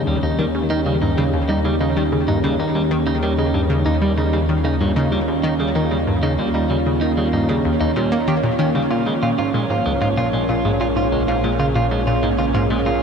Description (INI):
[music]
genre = ambient, sequencer-driven space music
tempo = 95 BPM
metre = 4/4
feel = straight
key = unclear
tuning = A4 = 440 Hz
[part]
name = evolving wavetable pad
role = sustained chords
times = 0.0-13.0 s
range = Eb3 to Db5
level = -21 LUFS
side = right 1 dB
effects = chorus, built-in reverb
[part]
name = analog pluck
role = riff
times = 0.0-13.0 s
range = Db2 to Bb3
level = -21 LUFS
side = left 1 dB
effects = chorus, tape echo
[part]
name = fat analog bass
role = bass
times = 0.0-13.0 s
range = Bb1 to Eb2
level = -25 LUFS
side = left 1 dB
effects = none
[part]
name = clean electric guitar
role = arpeggios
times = 0.1-13.0 s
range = G3 to G4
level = -24 LUFS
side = right 2 dB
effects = auto-pan, tape echo
[sound]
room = wet huge ambient reverb, RT60 7.5 s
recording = in a vast, echoing space, cassette tape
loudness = -16 LUFS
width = side -6 dB against mid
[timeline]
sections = 0.0-13.0 A section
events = none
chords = 0.0 Eb7; 8.9 Bbm7